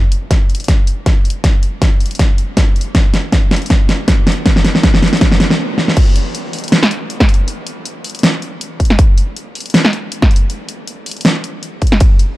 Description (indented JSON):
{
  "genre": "future bass",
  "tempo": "159 BPM",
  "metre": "4/4",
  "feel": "swing 55% on 16ths, half-time",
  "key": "none",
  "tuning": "none",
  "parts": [
    { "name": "big-room dance drum kit", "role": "drums", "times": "0.1-12.3 s", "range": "crash cymbal, hi-hat, ride cymbal, snare drum", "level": "-15 LUFS", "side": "equal", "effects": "none" },
    { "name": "electronic kick drum", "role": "drums", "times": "0.3-12.1 s", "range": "none", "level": "-11 LUFS", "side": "equal", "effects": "none" }
  ],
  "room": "light reverb",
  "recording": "dark, warm production",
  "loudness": "-11 LUFS",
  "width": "side -17 dB against mid",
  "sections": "0.0-6.0 A section; 6.0-12.4 B section",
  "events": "build-up 0.0-6.0; drum fill 0.0-5.6, 5.8; stop 5.6-6.0; drop 6.0-12.4",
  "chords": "none",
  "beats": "0.31 0.69 1.06 | 1.44 1.82 2.19 2.57 | 2.95 3.33 3.70 4.08 | 4.46 4.84 5.21 5.59 | 5.97 6.34 6.72 7.10 | 7.48 7.85 8.23 8.61 | 8.99 9.36 9.74 10.12 | 10.50 10.87 11.25 11.63 | 12.01"
}